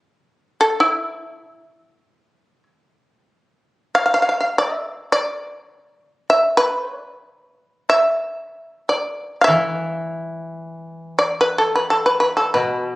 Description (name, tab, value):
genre	japanese traditional, Japanese chamber music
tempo	free time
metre	none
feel	none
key	E in sen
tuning	A4 = 440 Hz
part	shamisen	melody	0.6-13.0 s	E4 to F5	-16 LUFS	equal	none
part	koto	accompaniment	9.5-13.0 s	B2 to E3	-25 LUFS	left 1 dB	none
room	wet recital hall reverb, RT60 1.3 s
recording	recorded on a phone in the room, studio ambience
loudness	-17 LUFS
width	side -20 dB against mid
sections	0.0-2.9 A section; 2.9-13.0 A section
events	none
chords	none